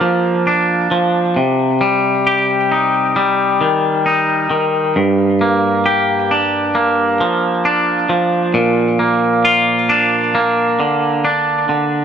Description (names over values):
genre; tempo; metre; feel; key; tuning
rock; 67 BPM; 4/4; straight; G minor; A4 = 442 Hz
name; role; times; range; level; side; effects
twangy electric guitar; solo; 0.0-12.0 s; G2 to G4; -13 LUFS; equal; digital delay
room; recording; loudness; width
light reverb, digital ambience; nothing above 10.5 kHz; -13 LUFS; side -8 dB against mid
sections
0.0-12.0 A section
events
build-up 0.0-12.0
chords
0.0 Gm7; 1.4 Cm; 5.0 Gm7; 8.6 Bb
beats
0.47 | 1.37 2.27 3.17 4.07 | 4.97 5.87 6.76 7.66 | 8.56 9.46 10.35 11.25